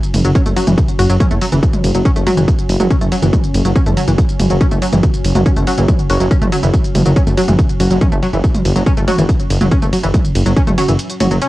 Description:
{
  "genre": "driving peak-time techno",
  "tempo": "141 BPM",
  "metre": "4/4",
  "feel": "straight",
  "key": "unclear",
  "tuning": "A4 = 440 Hz",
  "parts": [
    { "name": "deep dark ambient pad", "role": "drone", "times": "0.0-11.5 s", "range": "F#3 to C#4", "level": "-25 LUFS", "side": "equal", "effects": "chorus, built-in reverb, sidechain pumping, cassette tape" },
    { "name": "techno drum kit", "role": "drums", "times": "0.0-11.5 s", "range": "hi-hat, ride cymbal, toms", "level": "-20 LUFS", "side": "right 1 dB", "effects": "sidechain pumping on hats, cassette tape, sidechain pumping on toms, sidechain pumping on cymbals" },
    { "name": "dark detuned saw bass", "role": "bass", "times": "0.1-11.4 s", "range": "F#1", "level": "-15 LUFS", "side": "equal", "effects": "tube saturation, sidechain pumping" },
    { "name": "tight sequenced synth", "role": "riff", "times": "0.2-11.5 s", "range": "E3 to C#4", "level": "-19 LUFS", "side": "equal", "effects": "chorus, tube saturation, sidechain pumping, cassette tape, analog delay" },
    { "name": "electronic kick drum", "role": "drums", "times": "0.4-10.7 s", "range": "none", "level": "-14 LUFS", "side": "equal", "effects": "cassette tape" },
    { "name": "filtered dub chord stab", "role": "stabs", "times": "0.6-2.4, 5.7-11.3 s", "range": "F#3 to F#4", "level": "-20 LUFS", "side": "left 1 dB", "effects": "phaser, sidechain pumping, cassette tape, analog delay" }
  ],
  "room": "light reverb",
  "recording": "home recording on cassette",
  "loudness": "-11 LUFS",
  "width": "side -17 dB against mid",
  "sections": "0.0-11.5 A section",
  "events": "break 11.0-11.5",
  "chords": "0.0 F#5"
}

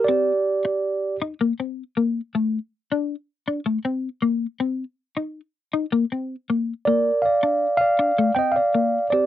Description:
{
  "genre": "highlife",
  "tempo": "106 BPM (dotted quarters)",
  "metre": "12/8",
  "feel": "straight",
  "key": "Bb major",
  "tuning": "A4 = 437 Hz",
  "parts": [
    { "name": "mellow tine electric piano", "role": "melody", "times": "0.0-1.2, 6.9-9.3 s", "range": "G4 to G5", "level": "-19 LUFS", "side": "right 2 dB", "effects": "none" },
    { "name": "clean electric guitar", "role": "accompaniment", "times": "0.1-9.3 s", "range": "A3 to Eb4", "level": "-23 LUFS", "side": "left 5 dB", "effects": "analog chorus" }
  ],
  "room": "little or no reverb",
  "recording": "none",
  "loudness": "-21 LUFS",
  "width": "side -12 dB against mid",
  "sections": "0.0-9.3 A section",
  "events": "none",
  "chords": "0.1 Csus2; 1.2 Bbsus24; 2.3 Bbmaj7; 4.6 Cm; 5.7 Bbsus24; 6.9 Bb"
}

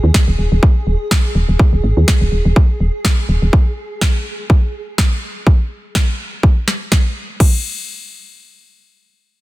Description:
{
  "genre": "minimal techno",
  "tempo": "124 BPM",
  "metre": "4/4",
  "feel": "swing 55% on 16ths",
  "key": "unclear",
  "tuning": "A4 = 441 Hz",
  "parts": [
    { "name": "woody FM bass", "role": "bass", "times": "0.0-3.5 s", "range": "Eb1 to Eb2", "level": "-13 LUFS", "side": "equal", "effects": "sidechain pumping" },
    { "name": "swarming drone", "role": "texture", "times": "0.0-3.5 s", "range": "Ab4", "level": "-28 LUFS", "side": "right 1 dB", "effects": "built-in reverb, sidechain pumping" },
    { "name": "booming analog drum machine", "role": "drums", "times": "0.1-7.5 s", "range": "crash cymbal, snare drum", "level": "-21 LUFS", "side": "equal", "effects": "none" },
    { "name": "electronic kick drum", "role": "drums", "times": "0.1-7.5 s", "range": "none", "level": "-12 LUFS", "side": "equal", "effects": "none" }
  ],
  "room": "little or no reverb",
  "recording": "dense, heavily limited modern master",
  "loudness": "-13 LUFS",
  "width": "side -18 dB against mid",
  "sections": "0.0-7.4 A section; 7.4-9.4 B section",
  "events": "filter sweep on FM bass 0.0-3.5",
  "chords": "0.0 Ebsus4; 7.4 N.C."
}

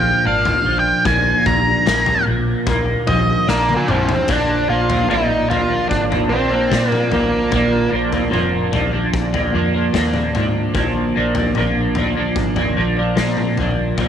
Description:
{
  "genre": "psychedelic rock",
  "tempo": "74 BPM",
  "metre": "4/4",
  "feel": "straight",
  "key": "Bb mixolydian",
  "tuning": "A4 = 444 Hz",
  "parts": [
    { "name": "octave-fuzz lead guitar", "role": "melody", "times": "0.0-7.9 s", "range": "Bb3 to Bb5", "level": "-18 LUFS", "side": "equal", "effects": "distortion, slapback echo" },
    { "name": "twelve-string electric guitar", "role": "riff", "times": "0.0-14.1 s", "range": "Bb2 to D4", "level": "-18 LUFS", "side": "right 1 dB", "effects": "rotary speaker, double-tracked left and right" },
    { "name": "vintage muted fingered electric bass", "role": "bass", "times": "0.0-14.1 s", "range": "F1 to Bb2", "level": "-24 LUFS", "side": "equal", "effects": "none" },
    { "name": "raw garage drum kit", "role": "drums", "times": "0.5-14.1 s", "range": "crash cymbal, kick drum, snare drum, toms", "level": "-23 LUFS", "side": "left 4 dB", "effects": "none" }
  ],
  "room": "light reverb, small room ambience",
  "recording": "1960s-style stereo",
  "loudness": "-15 LUFS",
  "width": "side -9 dB against mid",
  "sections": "0.0-4.3 A section; 4.3-14.1 B section",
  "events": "lead electric guitar solo 0.0-4.3; drum fill 3.5-4.3",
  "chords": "0.0 Bb"
}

